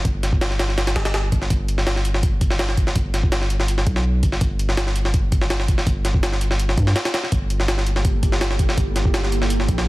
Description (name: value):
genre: drum and bass, jungle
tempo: 165 BPM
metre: 4/4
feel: straight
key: G dorian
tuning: A4 = 440 Hz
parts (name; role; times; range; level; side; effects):
- long sustained 808-style bass; bass; 0.0-9.9 s; G1 to G2; -21 LUFS; equal; none
- jungle sampler-style drum kit; drums; 0.0-9.9 s; hi-hat, kick drum, snare drum; -20 LUFS; equal; overdrive, studio reverb
- ethereal airy pad; sustained chords; 7.9-9.9 s; Bb3 to A4; -28 LUFS; right 3 dB; ensemble chorus, built-in reverb
room: little or no reverb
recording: dense, heavily limited modern master, vinyl crackle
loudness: -18 LUFS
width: side -19 dB against mid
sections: 0.0-9.9 A section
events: none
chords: 0.0 N.C.; 1.5 G; 4.4 N.C.; 7.3 Gm69